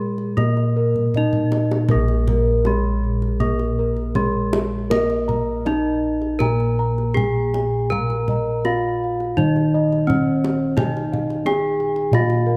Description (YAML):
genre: Javanese gamelan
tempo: 81 BPM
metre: 4/4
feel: uneven beats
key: Bb slendro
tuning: A4 = 440 Hz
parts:
  - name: gamelan-type bronze metallophone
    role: melody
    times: 0.0-12.6 s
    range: Ab3-40c to Bb4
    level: -25 LUFS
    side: equal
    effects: none
  - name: gamelan-type bossed gongs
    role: arpeggios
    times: 0.0-12.6 s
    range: Ab4-40c to Bb5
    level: -31 LUFS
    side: equal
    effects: none
  - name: gamelan-type bronze metallophone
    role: arpeggios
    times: 0.0-12.6 s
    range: Ab4-40c to Bb5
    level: -32 LUFS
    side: equal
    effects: tape echo
  - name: gamelan-type bossed gongs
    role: bass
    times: 0.0-12.6 s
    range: Bb1 to Bb4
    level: -24 LUFS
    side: equal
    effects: none
  - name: kendang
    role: percussion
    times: 0.2-12.4 s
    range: none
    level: -28 LUFS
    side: equal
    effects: none
room: light reverb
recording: close, detailed microphones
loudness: -20 LUFS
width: mono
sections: 0.0-1.9 A section; 1.9-12.6 B section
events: drum fill 1.0-1.9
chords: none